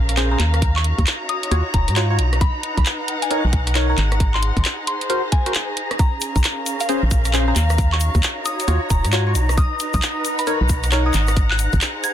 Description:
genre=UK garage, two-step garage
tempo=134 BPM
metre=4/4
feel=swing 63% on 16ths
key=unclear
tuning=A4 = 438 Hz
part: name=soft string machine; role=sustained chords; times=0.0-12.1 s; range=Bb5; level=-30 LUFS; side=equal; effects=ensemble chorus, sidechain pumping
part: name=organ-like FM bass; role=bass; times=0.0-11.8 s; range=Eb1 to Ab2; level=-18 LUFS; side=equal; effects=none
part: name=dark studio string section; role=texture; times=0.0-12.1 s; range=Db4 to F#5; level=-29 LUFS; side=equal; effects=sidechain pumping
part: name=garage drum kit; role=drums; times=0.1-12.1 s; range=handclaps, hi-hat, rim click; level=-23 LUFS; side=equal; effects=none
part: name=percussive organ stab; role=stabs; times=0.2-11.1 s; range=Db4 to Db5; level=-24 LUFS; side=left 1 dB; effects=analog chorus, digital delay
part: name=soft synth bell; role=melody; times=0.3-12.1 s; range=F5 to Ab6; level=-27 LUFS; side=left 1 dB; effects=chorus, tape echo
part: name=electronic kick drum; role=drums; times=0.6-11.8 s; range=none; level=-19 LUFS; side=equal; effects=none
part: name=egg shaker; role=percussion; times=6.0-12.1 s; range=none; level=-32 LUFS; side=left 6 dB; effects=none
room=little or no reverb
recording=dense, heavily limited modern master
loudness=-17 LUFS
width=side -10 dB against mid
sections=0.0-12.1 A section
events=break 5.5-6.0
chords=0.0 Bbm7; 0.6 Ebm9; 2.2 Bmaj7; 4.0 Ab7; 6.0 Bbm7; 7.8 Ebm9; 9.4 Bmaj7; 11.1 Ab7

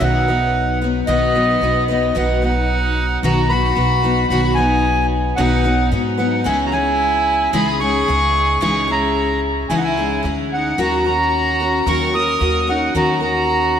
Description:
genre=acoustic folk duo or small band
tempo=111 BPM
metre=4/4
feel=straight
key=B major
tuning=A4 = 440 Hz
part: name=accordion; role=melody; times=0.0-13.8 s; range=D#5 to D#6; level=-18 LUFS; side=equal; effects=ping-pong delay
part: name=rich fiddle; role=second line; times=0.0-13.8 s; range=B3 to A#4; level=-23 LUFS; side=right 2 dB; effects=none
part: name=picked steel-string acoustic guitar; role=accompaniment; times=0.0-13.8 s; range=B2 to B4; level=-20 LUFS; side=left 3 dB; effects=analog chorus
part: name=upright bass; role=bass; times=0.0-13.8 s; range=B1 to G#2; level=-22 LUFS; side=right 1 dB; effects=none
room=wet lush hall reverb, RT60 3.3 s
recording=dreamy mix soaked in reverb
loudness=-15 LUFS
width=side -8 dB against mid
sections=0.0-2.2 A section; 2.2-13.8 A section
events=none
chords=0.0 B; 6.5 C#madd9; 10.8 D#m7

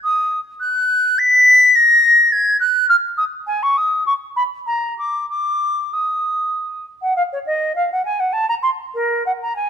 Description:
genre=classical, baroque-style fantasia for unaccompanied flute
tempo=94-106 BPM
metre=3/4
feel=rubato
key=Eb minor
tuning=A4 = 441 Hz
part: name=silver concert flute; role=solo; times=0.0-9.7 s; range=Bb4 to Cb7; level=-14 LUFS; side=equal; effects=none
room=light reverb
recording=close, detailed microphones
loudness=-14 LUFS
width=side -8 dB against mid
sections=0.0-7.2 A section; 7.2-9.7 A section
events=none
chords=none

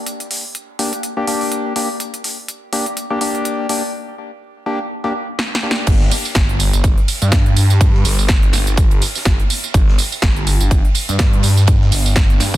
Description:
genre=bass house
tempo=124 BPM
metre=4/4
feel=swing 56% on 16ths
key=G minor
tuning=A4 = 440 Hz
part: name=big-room dance drum kit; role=drums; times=0.1-12.6 s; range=crash cymbal, hi-hat, snare drum, tambourine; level=-20 LUFS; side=right 1 dB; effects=none
part: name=percussive organ stab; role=stabs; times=0.8-6.1 s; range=Bb3 to G4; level=-21 LUFS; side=left 2 dB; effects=chorus, sidechain pumping, ping-pong delay
part: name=phased detuned saw bass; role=bass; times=5.9-12.6 s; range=G1 to G2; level=-15 LUFS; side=equal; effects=phaser, overdrive, sidechain pumping
part: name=big rock drum kit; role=drums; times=5.9-12.5 s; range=ride cymbal, snare drum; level=-29 LUFS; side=right 3 dB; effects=sidechain pumping on cymbals, high-pass filter on cymbals, high-pass filter on snare, high-pass filter on room
part: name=electronic kick drum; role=drums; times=5.9-12.6 s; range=none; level=-14 LUFS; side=equal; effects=none
room=digital ambience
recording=dense, heavily limited modern master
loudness=-14 LUFS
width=side -15 dB against mid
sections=0.0-5.9 A section; 5.9-12.6 B section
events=drum fill 5.4-5.9; drop 5.9-12.6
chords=0.0 Gm; 5.9 N.C.

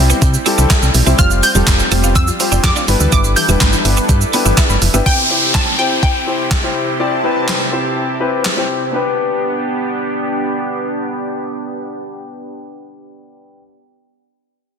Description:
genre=dance-pop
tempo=124 BPM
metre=4/4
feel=straight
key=G mixolydian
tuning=A4 = 441 Hz
part: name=warm grand piano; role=accompaniment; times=0.0-13.6 s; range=G3 to D5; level=-20 LUFS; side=left 3 dB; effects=sidechain pumping, low-pass filter
part: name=soft supersaw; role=sustained chords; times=0.0-13.6 s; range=C3 to A5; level=-22 LUFS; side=right 1 dB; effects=sidechain pumping, low-pass filter
part: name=mallet-like synth pluck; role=arpeggios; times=0.0-5.0 s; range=E3 to B5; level=-25 LUFS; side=left 8 dB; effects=chorus, sidechain pumping, tape echo
part: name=solid FM bass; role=bass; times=0.0-5.0 s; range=E1 to C3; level=-14 LUFS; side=equal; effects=sidechain pumping
part: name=clean electric guitar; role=riff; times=0.1-5.0 s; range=G3 to F4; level=-23 LUFS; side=right 9 dB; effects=ensemble chorus
part: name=gated 80s digital drum machine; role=drums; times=0.1-8.6 s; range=handclaps, hi-hat, kick drum, shaker, snare drum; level=-16 LUFS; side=equal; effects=gated reverb, gated reverb snare, overdrive
part: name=tube shaker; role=percussion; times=0.1-5.1 s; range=none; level=-29 LUFS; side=right 12 dB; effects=none
part: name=analog pluck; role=melody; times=1.2-8.4 s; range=G5 to G6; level=-20 LUFS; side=equal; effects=chorus, low-pass filter, tape echo
part: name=downlifter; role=sound effects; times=5.1-8.9 s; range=none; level=-19 LUFS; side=equal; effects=none
room=moderate lush hall reverb, RT60 1.9 s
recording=dense, heavily limited modern master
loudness=-12 LUFS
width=side -7 dB against mid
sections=0.0-5.1 A section; 5.1-8.9 B section; 8.9-12.8 C section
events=filter sweep 5.1-8.9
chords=0.0 C; 1.2 Fsus2; 2.9 G6; 5.1 C; 8.9 G

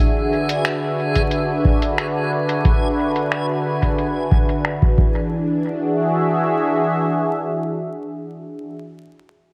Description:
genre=ambient dub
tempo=90 BPM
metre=4/4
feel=straight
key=E mixolydian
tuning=A4 = 439 Hz
part: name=warm analog pad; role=sustained chords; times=0.0-8.7 s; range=D3 to E5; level=-22 LUFS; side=equal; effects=chorus
part: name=backwards swelling texture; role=texture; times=0.0-5.3 s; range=G#4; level=-32 LUFS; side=equal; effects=built-in reverb
part: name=lo-fi sampler-style drum kit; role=drums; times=0.5-4.8 s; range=finger snaps, hi-hat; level=-29 LUFS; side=equal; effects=low-pass filter on hats, studio ambience, low-pass filter on snare, dub echo
part: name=electronic kick drum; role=drums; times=1.2-5.1 s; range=none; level=-20 LUFS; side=equal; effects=studio ambience
room=moderate echo chamber reverb, RT60 2.2 s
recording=vinyl crackle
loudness=-20 LUFS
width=mono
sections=0.0-5.3 A section; 5.3-8.0 B section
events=filter sweep on drum 0.0-5.3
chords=0.0 E7

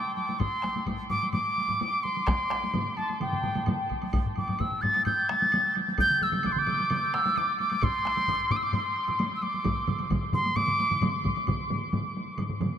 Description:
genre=japanese traditional, taiko drum ensemble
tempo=130 BPM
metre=4/4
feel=straight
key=D suspended pentatonic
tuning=A4 = 435 Hz
part: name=wooden piccolo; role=melody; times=0.0-11.2 s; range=G5 to A6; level=-27 LUFS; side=equal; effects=none
part: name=taiko ensemble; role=percussion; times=0.2-12.8 s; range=none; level=-34 LUFS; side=equal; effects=none
part: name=woodblock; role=percussion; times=0.2-12.7 s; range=none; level=-45 LUFS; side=right 4 dB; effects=none
part: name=taiko ensemble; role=percussion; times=0.4-12.7 s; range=none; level=-33 LUFS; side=left 3 dB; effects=none
part: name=taiko ensemble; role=percussion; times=0.4-11.6 s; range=none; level=-32 LUFS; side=equal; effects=none
part: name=taiko ensemble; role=percussion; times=2.3-12.7 s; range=none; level=-34 LUFS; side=right 4 dB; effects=none
room=wet huge ambient reverb, RT60 7.3 s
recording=in a vast, echoing space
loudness=-25 LUFS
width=side -9 dB against mid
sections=0.0-11.5 A section; 11.5-12.8 B section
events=speeding up 0.0-12.8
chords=none

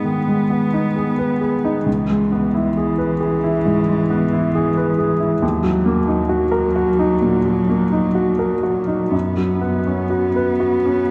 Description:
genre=neoclassical piano and strings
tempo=60-69 BPM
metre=4/4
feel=rubato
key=unclear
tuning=A4 = 438 Hz
part: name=rich cello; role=second line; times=0.0-11.1 s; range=E3 to B3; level=-25 LUFS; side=equal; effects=none
part: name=clear upright piano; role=accompaniment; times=0.0-11.1 s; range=C#2 to B4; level=-19 LUFS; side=equal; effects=none
room=wet cathedral reverb, RT60 4.3 s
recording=recorded in a church or concert hall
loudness=-18 LUFS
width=mono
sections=0.0-11.1 A section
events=none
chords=0.0 G#m; 1.9 C#m7; 5.4 D#m; 9.1 F#sus4

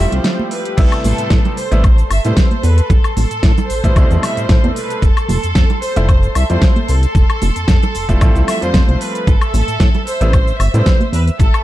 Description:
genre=nu-disco, nu disco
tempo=113 BPM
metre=4/4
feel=swing 54% on 16ths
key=A minor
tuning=A4 = 440 Hz
part: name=rich studio violin section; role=melody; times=0.0-11.6 s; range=A4 to E5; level=-22 LUFS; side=right 1 dB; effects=ping-pong delay
part: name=bright grand piano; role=accompaniment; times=0.0-11.0 s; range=B2 to F4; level=-22 LUFS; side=equal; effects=digital delay
part: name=lush unison pad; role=sustained chords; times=0.0-11.6 s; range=G4 to E6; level=-27 LUFS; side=equal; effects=chorus, sidechain pumping
part: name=chorused synth bass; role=bass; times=0.0-11.5 s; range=F1 to A2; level=-15 LUFS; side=equal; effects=tube saturation, sidechain pumping
part: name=pop drum kit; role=drums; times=0.1-11.6 s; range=cabasa, crash cymbal, hi-hat, snare drum, woodblock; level=-21 LUFS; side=left 1 dB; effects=studio reverb
part: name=congas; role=percussion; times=0.4-11.5 s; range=none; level=-25 LUFS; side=right 4 dB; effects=none
part: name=electronic kick drum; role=drums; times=0.8-11.5 s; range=none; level=-12 LUFS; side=equal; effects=studio reverb
room=digital ambience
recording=dark, warm production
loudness=-11 LUFS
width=side -15 dB against mid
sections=0.8-11.6 A section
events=break 0.2-0.8; drop 0.8-11.6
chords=0.0 Fmaj7; 0.8 Am7; 5.0 Fmaj7; 9.3 Am7

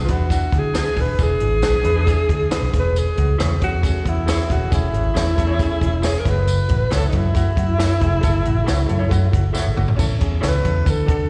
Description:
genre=uptempo 1960s-style soul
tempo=136 BPM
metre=4/4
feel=straight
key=unclear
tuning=A4 = 445 Hz
part: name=breathy alto saxophone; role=melody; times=0.0-11.3 s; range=D#4 to B4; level=-25 LUFS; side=equal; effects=none
part: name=vintage muted fingered electric bass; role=bass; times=0.0-11.3 s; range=D#1 to D3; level=-22 LUFS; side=equal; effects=none
part: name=clear concert grand piano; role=accompaniment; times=0.1-11.2 s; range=A3 to B4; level=-31 LUFS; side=equal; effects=slapback echo
part: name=compact cocktail drum kit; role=drums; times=0.1-11.2 s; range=crash cymbal, hi-hat, kick drum, snare drum, toms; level=-24 LUFS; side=equal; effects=none
part: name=tambourine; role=percussion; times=0.3-11.0 s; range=none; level=-38 LUFS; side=equal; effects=slapback echo
part: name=electric guitar through a small old amp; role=stabs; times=0.7-10.5 s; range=D4 to C#5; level=-31 LUFS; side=equal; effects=lush chorus, slapback echo
room=little or no reverb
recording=live gig heard through the venue's PA, recital hall reverb, vinyl crackle, nothing above 10.7 kHz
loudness=-19 LUFS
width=mono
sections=0.0-10.0 A section; 10.0-11.3 B section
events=drum fill 9.6-10.0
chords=0.0 E7; 2.7 Amaj7/E; 6.3 F#m7; 10.0 A

